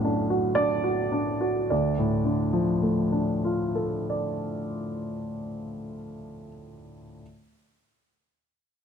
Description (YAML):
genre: neoclassical minimalist piano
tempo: 54 BPM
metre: 3/4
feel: rubato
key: D dorian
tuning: A4 = 440 Hz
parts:
  - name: warm upright piano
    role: solo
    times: 0.0-7.2 s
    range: B1 to D5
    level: -25 LUFS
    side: equal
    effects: none
room: moderate recital hall reverb, RT60 1.4 s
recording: close, detailed microphones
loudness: -24 LUFS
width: side -7 dB against mid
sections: 0.0-1.7 A section; 1.7-5.0 B section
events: slowing down 0.0-1.7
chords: 0.0 Bm; 1.7 Dm